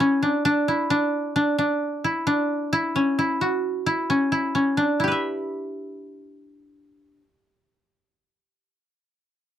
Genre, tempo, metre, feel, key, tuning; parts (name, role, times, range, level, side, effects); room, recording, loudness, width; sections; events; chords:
progressive instrumental, progressive; 132 BPM; 5/4; straight; E dorian; A4 = 441 Hz
koto; solo; 0.0-8.8 s; C#4 to E5; -21 LUFS; equal
light reverb; dry, close 1970s-style studio recording; -21 LUFS; side -10 dB against mid
0.0-5.0 A section; 5.0-7.3 B section
0.5 Dsus2; 2.7 C#madd11; 5.0 Em